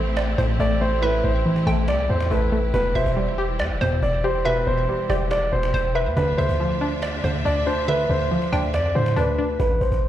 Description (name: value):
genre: hip hop, trap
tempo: 140 BPM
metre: 4/4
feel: half-time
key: unclear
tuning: A4 = 439 Hz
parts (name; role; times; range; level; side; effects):
- dark concert grand piano; melody; 0.0-10.1 s; B4 to D5; -24 LUFS; right 1 dB; low-pass filter, digital delay
- hollow square pluck; second line; 0.0-8.7 s; C5 to G5; -29 LUFS; right 2 dB; chorus, digital delay
- warbly dusty pluck; accompaniment; 0.0-9.6 s; A2 to B4; -26 LUFS; left 1 dB; chorus, low-pass filter
- clear symphonic string section; sustained chords; 0.0-9.6 s; D3 to E5; -32 LUFS; equal; none
- long sustained 808-style bass; bass; 0.0-10.1 s; E1 to A2; -24 LUFS; equal; none
- cajon; drums; 0.2-10.1 s; none; -33 LUFS; equal; none
room: light reverb, small room reverb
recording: played on a big sound system in a bare room, large studio reverb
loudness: -19 LUFS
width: side -12 dB against mid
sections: 0.0-9.6 A section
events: none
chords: 0.0 Am7; 2.7 Em; 6.2 Dmadd9